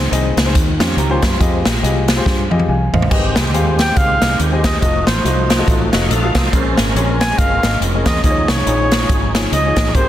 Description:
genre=uptempo gospel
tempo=140 BPM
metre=4/4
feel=swing 59% on 8ths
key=unclear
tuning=A4 = 440 Hz
part: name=warm grand piano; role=accompaniment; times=0.0-10.1 s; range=Ab2 to Ab5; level=-22 LUFS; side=left 3 dB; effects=none
part: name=fingered electric bass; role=bass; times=0.0-10.1 s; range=F1 to G2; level=-19 LUFS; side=equal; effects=none
part: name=swinging big-band drum kit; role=drums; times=0.1-10.1 s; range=hi-hat, kick drum, snare drum, splash cymbal, toms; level=-16 LUFS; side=equal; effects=none
part: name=clean electric guitar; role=second line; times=0.8-1.6 s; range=Db4 to C5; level=-25 LUFS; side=right 4 dB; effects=ensemble chorus, tape echo
part: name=tonewheel organ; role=sustained chords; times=3.1-10.1 s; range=Eb3 to Gb5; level=-23 LUFS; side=right 2 dB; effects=fast rotary speaker, chorus vibrato
part: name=mellow trumpet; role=melody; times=3.8-10.1 s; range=C5 to Ab5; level=-19 LUFS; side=equal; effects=none
room=light reverb, small room ambience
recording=dense, heavily limited modern master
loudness=-13 LUFS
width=side -12 dB against mid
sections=0.0-10.1 A section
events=drum fill 2.3-3.1; grand piano fill 2.5-3.1; tonewheel organ fill 5.7-6.5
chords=0.0 Ab; 0.6 Eb13; 1.4 Fm9; 3.1 Abmaj7; 4.8 F7b9; 6.5 Bbm9; 8.2 Eb9sus4

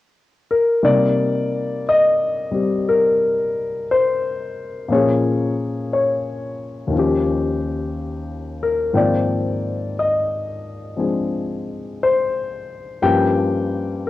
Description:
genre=jazz ballad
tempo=59 BPM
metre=4/4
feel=swing 67% on 8ths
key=C minor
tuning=A4 = 437 Hz
part: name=warm concert grand piano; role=solo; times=0.5-14.1 s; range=Eb2 to G5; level=-18 LUFS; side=left 2 dB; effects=cassette tape
room=moderate spring reverb, RT60 2.0 s, small room ambience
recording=home recording on cassette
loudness=-17 LUFS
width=side -15 dB against mid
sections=0.8-14.1 A section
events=none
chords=0.0 N.C.; 0.8 Cm9; 4.9 Bbm7; 6.9 Eb9; 8.9 Abmaj13; 13.0 Gm7b5

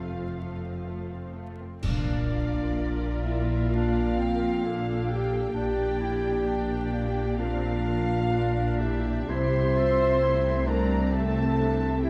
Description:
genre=cinematic, emotional film score for orchestra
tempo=61-67 BPM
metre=4/4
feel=rubato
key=unclear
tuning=A4 = 443 Hz
part: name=muted symphonic violin section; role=melody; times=0.0-12.1 s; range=D5 to G5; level=-43 LUFS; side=equal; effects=none
part: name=muted studio violin section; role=second line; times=0.0-12.1 s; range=A3 to C6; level=-40 LUFS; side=equal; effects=none
part: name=warm clarinet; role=second line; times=0.0-12.1 s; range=Bb3 to F4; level=-38 LUFS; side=equal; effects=none
part: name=muted symphonic viola section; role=accompaniment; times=0.0-12.1 s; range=F3 to E5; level=-39 LUFS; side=equal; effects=none
part: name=mellow French horn section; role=sustained chords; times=0.0-12.1 s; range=A3 to C5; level=-31 LUFS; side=equal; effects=none
part: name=muted studio cello section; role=bass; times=0.0-12.1 s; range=F2 to C3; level=-34 LUFS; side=equal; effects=none
part: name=muted symphonic double bass section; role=bass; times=0.0-12.1 s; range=F1 to C2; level=-32 LUFS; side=equal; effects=none
part: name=clash cymbals and concert bass drum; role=percussion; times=1.8-3.7 s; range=none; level=-35 LUFS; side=equal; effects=none
room=moderate scoring stage reverb, RT60 1.8 s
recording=dark, warm production, vinyl crackle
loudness=-26 LUFS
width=mono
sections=0.0-1.8 A section; 1.8-12.1 B section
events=band accent 1.8-2.8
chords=0.0 F; 1.8 Bb; 5.6 Gm/Bb; 9.3 C

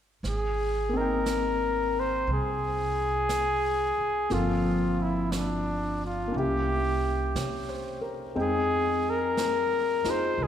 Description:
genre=jazz ballad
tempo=59 BPM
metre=4/4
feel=swing 68% on 8ths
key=Ab major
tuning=A4 = 440 Hz
part: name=upright bass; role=bass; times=0.2-10.5 s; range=G1 to C3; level=-33 LUFS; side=right 1 dB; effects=none
part: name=jazz brush drum kit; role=drums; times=0.2-10.5 s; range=brushed snare drum, hi-hat, snare drum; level=-40 LUFS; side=right 3 dB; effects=none
part: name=breathy trumpet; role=melody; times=0.3-10.5 s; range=Db4 to C5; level=-27 LUFS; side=left 1 dB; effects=none
part: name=warm grand piano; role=accompaniment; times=0.9-10.5 s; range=F3 to G5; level=-31 LUFS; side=left 2 dB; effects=none
room=wet concert hall reverb, RT60 2.6 s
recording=recorded in a church or concert hall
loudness=-25 LUFS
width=side -9 dB against mid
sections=0.2-10.5 A section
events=none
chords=0.2 Abmaj9; 4.3 Gm11; 6.3 C7b9; 8.4 Fm7

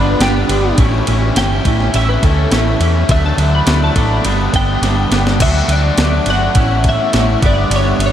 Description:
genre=indie rock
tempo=104 BPM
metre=4/4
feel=straight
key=G lydian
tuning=A4 = 440 Hz
part: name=twelve-string electric guitar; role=melody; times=0.0-8.1 s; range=D4 to B5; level=-19 LUFS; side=equal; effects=analog chorus, analog delay
part: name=biting overdriven guitar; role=riff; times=0.0-8.1 s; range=G2 to F#4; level=-20 LUFS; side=left 6 dB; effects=none
part: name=clean electric guitar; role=riff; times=0.0-8.1 s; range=G2 to G4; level=-21 LUFS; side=right 6 dB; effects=analog chorus, analog delay
part: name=hollow-body short-scale fingered electric bass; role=bass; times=0.0-8.1 s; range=G1 to E2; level=-16 LUFS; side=equal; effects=none
part: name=clean 12-bit digital drum machine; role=drums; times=0.2-8.1 s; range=crash cymbal, kick drum, ride cymbal, snare drum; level=-17 LUFS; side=equal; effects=none
room=moderate huge ambient reverb, RT60 8.9 s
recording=dreamy mix soaked in reverb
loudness=-11 LUFS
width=side -10 dB against mid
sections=0.0-5.4 A section; 5.4-8.1 B section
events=clean electric guitar solo 0.0-5.4; drum fill 4.8-5.4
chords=0.0 G; 0.8 A; 3.1 Dadd9; 4.3 G; 5.4 D; 6.6 A; 7.4 G

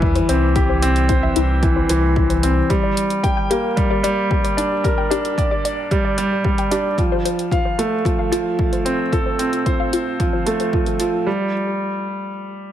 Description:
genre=piano and strings electronica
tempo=112 BPM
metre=4/4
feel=straight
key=unclear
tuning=A4 = 440 Hz
part: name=clear concert grand piano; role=riff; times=0.0-12.7 s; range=E3 to G5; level=-19 LUFS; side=right 1 dB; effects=ping-pong delay
part: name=warm sub bass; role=bass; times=0.0-2.6 s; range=C2 to E2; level=-19 LUFS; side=equal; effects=sidechain pumping
part: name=electronic kick drum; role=drums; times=0.0-10.8 s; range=none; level=-21 LUFS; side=equal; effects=overdrive
part: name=warbly dusty pluck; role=arpeggios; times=0.2-11.5 s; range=E4 to G5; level=-26 LUFS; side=left 5 dB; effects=chorus, sidechain pumping, ping-pong delay
part: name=electronic hi-hat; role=drums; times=0.2-11.1 s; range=none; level=-29 LUFS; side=equal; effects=overdrive
room=light reverb, digital ambience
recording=none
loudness=-16 LUFS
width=side -11 dB against mid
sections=0.0-11.3 A section; 11.3-12.7 B section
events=none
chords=0.0 C; 2.7 Gm; 7.0 F; 11.3 N.C.

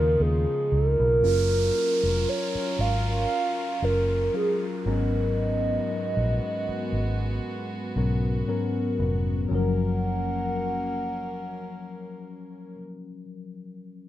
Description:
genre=contemporary R&B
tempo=58 BPM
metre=4/4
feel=swing 54% on 16ths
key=F# major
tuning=A4 = 440 Hz
part: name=hollow clarinet-like synth lead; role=melody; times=0.0-12.8 s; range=G#4 to F#5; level=-26 LUFS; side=right 2 dB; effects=chorus
part: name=mellow tine electric piano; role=accompaniment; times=0.0-14.1 s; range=G#2 to E#5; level=-30 LUFS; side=left 4 dB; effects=phaser
part: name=warm studio string section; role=sustained chords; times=0.0-12.8 s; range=C#3 to A#4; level=-36 LUFS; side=right 2 dB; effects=none
part: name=vintage muted fingered electric bass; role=bass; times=0.0-12.8 s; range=E#1 to D#2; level=-26 LUFS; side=equal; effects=none
part: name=downlifter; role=sound effects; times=1.2-9.5 s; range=none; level=-38 LUFS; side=right 3 dB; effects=none
room=light reverb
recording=rough home demo mix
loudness=-23 LUFS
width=side -13 dB against mid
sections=0.0-1.2 A section; 1.2-9.5 B section; 9.5-13.6 C section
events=none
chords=0.0 C#9; 1.2 F#maj7; 4.9 G#m11; 9.5 F#maj7

